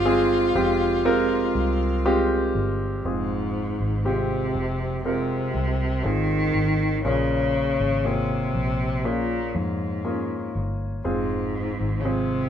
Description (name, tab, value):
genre	pop ballad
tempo	60 BPM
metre	4/4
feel	straight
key	F minor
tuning	A4 = 440 Hz
part	clear cello	melody	0.0-12.5 s	Ab2 to F4	-25 LUFS	equal	none
part	warm grand piano	accompaniment	0.0-12.5 s	Bb2 to Db5	-25 LUFS	right 1 dB	none
part	vintage muted fingered electric bass	bass	0.0-12.5 s	F1 to F2	-28 LUFS	equal	none
room	light reverb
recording	band playing live in one room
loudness	-21 LUFS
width	side -9 dB against mid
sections	0.0-3.0 A section; 3.0-12.5 B section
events	none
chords	0.0 Fmadd9; 7.0 Bbm7; 11.1 Fm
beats	0.05 1.05 2.05 | 3.05 4.05 5.05 6.05 | 7.05 8.05 9.05 10.05 | 11.05 12.05